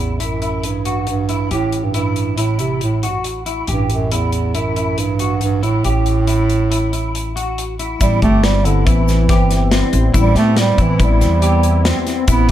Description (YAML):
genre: progressive instrumental, band music in an uneven meter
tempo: 139 BPM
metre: 5/4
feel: straight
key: A dorian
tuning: A4 = 440 Hz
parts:
  - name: warm bass clarinet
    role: melody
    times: 0.0-12.5 s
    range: E2 to B3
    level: -18 LUFS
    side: right 4 dB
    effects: plate reverb
  - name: clean electric guitar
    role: arpeggios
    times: 0.0-12.5 s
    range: C4 to G4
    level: -23 LUFS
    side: left 2 dB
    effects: ensemble chorus, ping-pong delay
  - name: upright bass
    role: bass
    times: 0.0-12.5 s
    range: G1 to A2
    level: -18 LUFS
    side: left 1 dB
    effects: none
  - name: modern studio drum kit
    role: drums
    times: 0.2-12.5 s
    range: hi-hat, kick drum, snare drum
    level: -20 LUFS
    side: left 1 dB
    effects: none
  - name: sweeping resonant pad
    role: accompaniment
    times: 8.0-12.5 s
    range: G3 to B4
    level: -22 LUFS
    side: left 4 dB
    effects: chorus
  - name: tube shaker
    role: percussion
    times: 8.0-12.5 s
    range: none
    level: -34 LUFS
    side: left 4 dB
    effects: none
room: light reverb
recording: dark, warm production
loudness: -14 LUFS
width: side -12 dB against mid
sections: 0.0-8.0 A section; 8.0-12.5 B section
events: bass clarinet solo 8.0-12.5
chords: 0.0 A5; 8.0 Am7